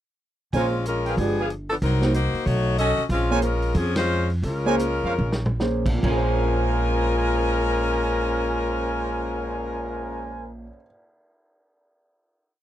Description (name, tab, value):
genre	jazz, big band swing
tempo	131-187 BPM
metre	4/4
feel	swing 61% on 8ths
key	Bb minor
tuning	A4 = 440 Hz
part	clear concert grand piano	accompaniment	0.5-10.9 s	Bb2 to D5	-28 LUFS	right 1 dB	none
part	clear trumpet section	stabs	0.5-10.5 s	Ab4 to Ab5	-28 LUFS	right 2 dB	none
part	upright bass	bass	0.5-10.7 s	G1 to F2	-26 LUFS	equal	none
part	vintage drum kit	drums	0.5-9.6 s	crash cymbal, cymbal swell, hi-hat, kick drum, ride cymbal, snare drum, toms	-30 LUFS	equal	none
part	bright saxophone section	melody	0.6-10.5 s	F3 to D#5	-25 LUFS	left 3 dB	none
room	little or no reverb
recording	dry, close 1970s-style studio recording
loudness	-21 LUFS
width	side -12 dB against mid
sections	0.5-6.0 A section; 6.0-9.7 final chord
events	slowing down 3.1-6.0; band accent 3.9; drum fill 5.2-5.6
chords	0.5 Bbm9; 1.2 G7b9; 1.8 Cm7b5; 2.5 B13; 3.1 Bbm9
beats	| 0.54 0.86 1.18 1.50 | 1.83 2.15 2.47 2.79 | 3.11 3.43 3.76 4.09 | 4.44 4.80 5.19 5.60 | 6.04 6.49 6.95 7.41 | 7.86 8.32 8.78 9.24